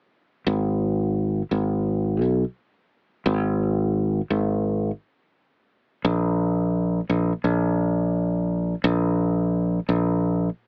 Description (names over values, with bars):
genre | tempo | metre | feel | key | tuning
chillout | 86 BPM | 4/4 | straight | unclear | A4 = 441 Hz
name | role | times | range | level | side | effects
modern bright fingered electric bass | bass | 0.5-10.5 s | G#1 to B1 | -24 LUFS | equal | none
room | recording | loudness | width
little or no reverb | AM radio sound | -24 LUFS | mono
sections
0.5-10.7 A section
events
none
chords
none